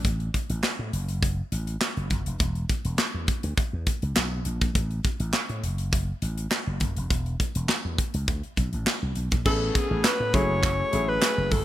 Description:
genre	early-eighties boogie funk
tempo	102 BPM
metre	4/4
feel	straight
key	unclear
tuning	A4 = 438 Hz
part	pipe organ, foundations	sustained chords	0.0, 9.5-11.6 s	F#3 to G#4	-37 LUFS	right 2 dB	none
part	slap bass with an envelope filter	bass	0.0-11.6 s	E1 to A2	-28 LUFS	equal	none
part	modern studio drum kit	drums	0.0-11.6 s	crash cymbal, handclaps, hi-hat, kick drum, snare drum	-26 LUFS	equal	none
part	group handclap	percussion	0.6-11.4 s	none	-32 LUFS	right 8 dB	none
part	breathy alto saxophone	melody	9.5-11.6 s	G#4 to C#5	-26 LUFS	left 1 dB	none
part	clear concert grand piano	accompaniment	9.5-11.4 s	F#3 to A4	-30 LUFS	left 2 dB	none
room	light reverb, small room ambience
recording	bright 1980s-style digital production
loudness	-24 LUFS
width	side -13 dB against mid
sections	0.0-9.5 A section; 9.5-11.6 B section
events	none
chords	0.0 N.C.; 0.9 F#m; 2.4 E5; 4.8 N.C.; 5.6 F#m; 7.1 E5; 9.5 Amaj9; 10.3 F#m9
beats	| 0.05 0.63 1.22 1.81 | 2.40 2.99 3.58 4.16 | 4.75 5.34 5.93 6.52 | 7.11 7.69 8.28 8.87 | 9.46 10.05 10.63 11.22

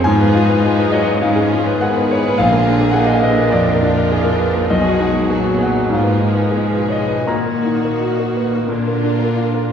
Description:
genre	classical, romantic movement for piano and orchestra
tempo	78-109 BPM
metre	4/4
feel	rubato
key	unclear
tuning	A4 = 440 Hz
part	bright concert grand piano	melody	0.0-9.7 s	Bb1 to Bb5	-15 LUFS	left 1 dB	none
part	warm symphonic violin section	second line	0.0-9.7 s	D#4 to Cb5	-24 LUFS	left 3 dB	none
part	rich symphonic viola section	accompaniment	0.0-9.7 s	D3 to Eb4	-22 LUFS	right 2 dB	none
part	rich symphonic cello section	bass	0.0-9.7 s	Ab2 to B2	-22 LUFS	right 2 dB	none
room	wet scoring stage reverb, RT60 1.8 s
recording	heard from further back in the room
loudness	-13 LUFS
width	side -8 dB against mid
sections	0.0-9.7 A section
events	none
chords	0.1 Fdim/Ab; 2.4 Bb7; 4.7 B6; 5.9 Abm; 7.3 Ebm/Bb; 8.7 Bb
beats	| 0.06 0.64 1.22 1.81 | 2.38 2.94 3.52 4.11 | 4.71 5.30 5.92 6.55 | 7.29 8.01 8.70 9.37

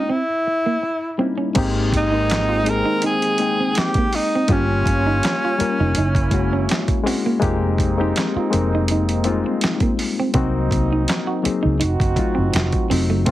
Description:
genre	R&B, neo-soul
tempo	82 BPM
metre	4/4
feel	swing 54% on 16ths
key	Ab major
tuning	A4 = 440 Hz
part	breathy tenor saxophone	melody	0.0-6.7 s	Db4 to Bb4	-21 LUFS	right 1 dB	slapback echo
part	semi-hollow electric guitar	second line	0.0-13.3 s	A3 to Gb4	-24 LUFS	right 4 dB	none
part	reed electric piano	accompaniment	0.0-13.3 s	Gb3 to G5	-22 LUFS	left 5 dB	none
part	brilliant trombone section	stabs	1.6-13.3 s	Eb3 to Ab4	-28 LUFS	right 4 dB	none
part	vintage muted fingered electric bass	bass	1.6-13.3 s	F1 to Db2	-21 LUFS	equal	none
part	dusty soul sampler-style drum kit	drums	1.6-13.3 s	crash cymbal, handclaps, hi-hat, kick drum, snare drum	-22 LUFS	right 1 dB	overdrive
room	light reverb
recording	heavily compressed radio sound, multiband compression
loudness	-17 LUFS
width	side -14 dB against mid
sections	0.0-1.6 A section; 1.6-13.3 B section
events	break 0.0-1.6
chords	0.1 Eb7b9; 1.6 Abmaj9; 4.5 Gm7b5; 6.0 Gb9; 7.4 Fm11; 10.3 Cm7b5; 11.8 F7b9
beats	0.10 0.83 | 1.56 2.29 3.02 3.75 | 4.49 5.22 5.95 6.68 | 7.41 8.14 8.88 9.61 | 10.34 11.07 11.80 12.54 | 13.27

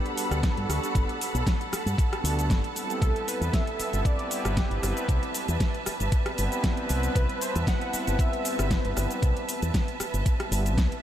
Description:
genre	nu-disco, nu disco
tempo	116 BPM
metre	4/4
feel	swing 54% on 16ths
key	G major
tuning	A4 = 440 Hz
part	wide unison lead	melody	0.0-9.1 s	G4 to F#5	-37 LUFS	equal	diffuse ambient delay
part	warm analog pad	accompaniment	0.0-10.7 s	G3 to D5	-33 LUFS	equal	chorus, sidechain pumping, ping-pong delay
part	rich studio string section	sustained chords	0.0-11.0 s	A4 to B5	-34 LUFS	right 3 dB	sidechain pumping
part	pop drum kit	drums	0.1-11.0 s	hi-hat, rim click, shaker, snare drum	-33 LUFS	left 1 dB	overdrive
part	fingered electric bass with an envelope filter	bass	0.3-10.9 s	G1 to G2	-28 LUFS	equal	sidechain pumping
part	electronic kick drum	drums	0.4-10.9 s	none	-26 LUFS	equal	none
room	moderate huge ambient reverb, RT60 8.1 s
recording	dreamy mix soaked in reverb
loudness	-24 LUFS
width	side -11 dB against mid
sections	0.0-11.0 A section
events	none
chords	0.0 Gmaj9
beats	0.43 | 0.95 1.47 1.98 2.50 | 3.02 3.54 4.05 4.57 | 5.09 5.61 6.12 6.64 | 7.16 7.67 8.19 8.71 | 9.22 9.74 10.26 10.78

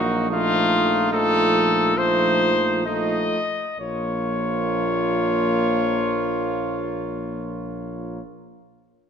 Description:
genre	classical, brass quintet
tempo	64-75 BPM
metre	4/4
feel	straight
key	Bb minor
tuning	A4 = 440 Hz
part	mellow trumpet	melody	0.0-8.2 s	F4 to Eb5	-23 LUFS	left 4 dB	none
part	clear trumpet	second line	0.0-8.2 s	Eb4 to F4	-28 LUFS	right 9 dB	none
part	clear euphonium	accompaniment	0.0-8.2 s	F3 to Gb3	-28 LUFS	right 4 dB	none
part	warm French horn	accompaniment	0.0-8.2 s	A3 to Bb3	-27 LUFS	left 2 dB	none
part	mellow bass trombone	bass	0.0-8.2 s	Bb1	-29 LUFS	right 3 dB	none
room	wet scoring stage reverb, RT60 1.9 s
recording	nothing above 10.9 kHz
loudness	-19 LUFS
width	side -7 dB against mid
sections	0.0-3.8 A section; 3.8-7.5 B section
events	slowing down 0.0-3.8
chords	0.3 F7/Bb; 3.8 Bbm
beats	| 0.30 1.12 1.97 2.86 | 3.79 4.73 5.67 6.60

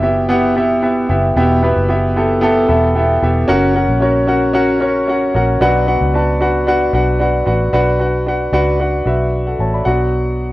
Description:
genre	piano-driven pop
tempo	113 BPM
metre	4/4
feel	straight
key	B minor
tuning	A4 = 440 Hz
part	clear concert grand piano	accompaniment	0.0-10.5 s	B2 to B5	-14 LUFS	equal	none
part	vintage muted fingered electric bass	bass	0.0-10.5 s	E1 to C#2	-18 LUFS	equal	none
room	moderate large studio reverb, RT60 1.2 s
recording	worn, warbling old tape, cassette tape, warbly pitch drift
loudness	-12 LUFS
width	side -17 dB against mid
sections	0.0-7.7 A section; 7.7-9.9 B section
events	grand piano fill 2.4-3.5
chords	0.0 Em; 3.5 F#; 5.6 Bm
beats	0.30 0.83 | 1.36 1.89 2.42 2.95 | 3.48 4.01 4.55 5.08 | 5.61 6.14 6.67 7.20 | 7.73 8.26 8.79 9.32 | 9.86 10.39

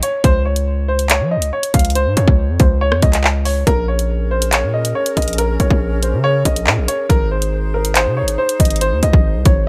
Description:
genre	hip hop, drill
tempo	140 BPM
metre	4/4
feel	half-time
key	Bb minor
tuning	A4 = 439 Hz
part	warm upright piano	melody	0.0-9.6 s	Bb4 to F5	-22 LUFS	equal	low-pass filter
part	hard-hitting 808-style bass	bass	0.0-9.7 s	Ab1 to F3	-20 LUFS	equal	none
part	drill drum kit	drums	0.0-9.6 s	handclaps, hi-hat, kick drum, rim click	-17 LUFS	equal	none
part	breathy mellow flute section	sustained chords	3.7-9.7 s	Db4 to C5	-29 LUFS	equal	none
room	little or no reverb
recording	none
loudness	-16 LUFS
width	mono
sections	0.0-9.7 A section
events	none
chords	0.2 Db; 3.7 Bbm7; 7.1 Ab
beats	| 0.24 0.67 1.10 1.53 | 1.96 2.38 2.81 3.24 | 3.67 4.10 4.53 4.96 | 5.38 5.81 6.24 6.67 | 7.10 7.53 7.96 8.38 | 8.81 9.24 9.67

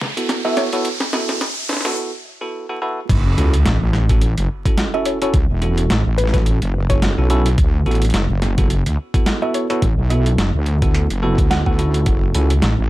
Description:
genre	glitch hop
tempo	107 BPM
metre	4/4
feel	swing 57% on 16ths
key	F# minor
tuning	A4 = 440 Hz
part	boom bap sampler-style drum kit	drums	0.0-12.8 s	crash cymbal, hi-hat, snare drum, tambourine	-23 LUFS	equal	overdrive
part	riser and sub drop	sound effects	0.0-5.3 s	none	-25 LUFS	equal	none
part	bell-like tine electric piano	stabs	0.2-12.5 s	B3 to A4	-23 LUFS	right 2 dB	sidechain pumping, digital delay
part	woody wave-folded pluck	melody	0.4-1.3, 4.9-11.7 s	B4 to F#5	-25 LUFS	equal	chorus, digital delay
part	wobble bass	bass	3.1-12.9 s	E1 to D2	-17 LUFS	equal	chorus, overdrive
part	electronic kick drum	drums	3.1-12.2 s	none	-17 LUFS	equal	overdrive
room	little or no reverb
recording	vinyl crackle, high-pass filter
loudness	-15 LUFS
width	side -16 dB against mid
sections	0.0-3.1 A section; 3.1-12.9 B section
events	build-up 0.0-3.1; drum fill 0.0-2.0; riser 0.0-2.0; filter sweep on tine electric piano 0.0-3.1; break 2.0-3.1; drop 3.1-12.9; impact 3.1-5.3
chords	0.0 B7sus4; 3.1 F#m7; 7.6 D69; 12.1 F#m7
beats	0.29 | 0.85 1.41 1.97 2.53 | 3.09 3.65 4.21 4.78 | 5.34 5.90 6.46 7.02 | 7.58 8.14 8.70 9.26 | 9.82 10.38 10.94 11.51 | 12.07 12.63

